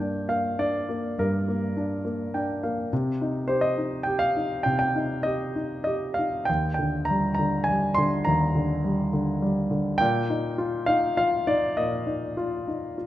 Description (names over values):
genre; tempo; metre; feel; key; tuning
classical, lyrical solo piano; 101 BPM; 3/4; rubato; C minor; A4 = 440 Hz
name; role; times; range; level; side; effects
warm concert grand piano; solo; 0.0-13.1 s; Eb2 to C6; -23 LUFS; equal; none
room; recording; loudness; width
moderate recital hall reverb, RT60 1.8 s; none; -23 LUFS; side -13 dB against mid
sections
0.0-13.1 A section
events
grand piano fill 2.0-2.9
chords
0.0 Gm; 2.9 Cm; 6.5 Ebmaj7; 10.0 Bbsus4